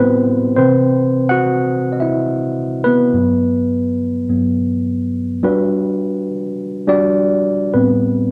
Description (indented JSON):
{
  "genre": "soul",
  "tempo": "105 BPM",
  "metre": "4/4",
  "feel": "swing 54% on 16ths",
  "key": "unclear",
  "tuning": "A4 = 436 Hz",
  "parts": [
    { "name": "mellow tine electric piano", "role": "solo", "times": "0.0-8.3 s", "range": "G2 to F#5", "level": "-16 LUFS", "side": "equal", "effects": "none" }
  ],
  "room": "wet stone room reverb, RT60 1.3 s",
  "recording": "band playing live in one room",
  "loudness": "-16 LUFS",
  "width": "mono",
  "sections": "0.0-5.4 A section; 5.4-7.7 B section",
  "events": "tine electric piano solo 0.0-5.4",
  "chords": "0.0 Am7; 0.6 Cmaj7; 3.1 Gmaj7; 7.7 Am7"
}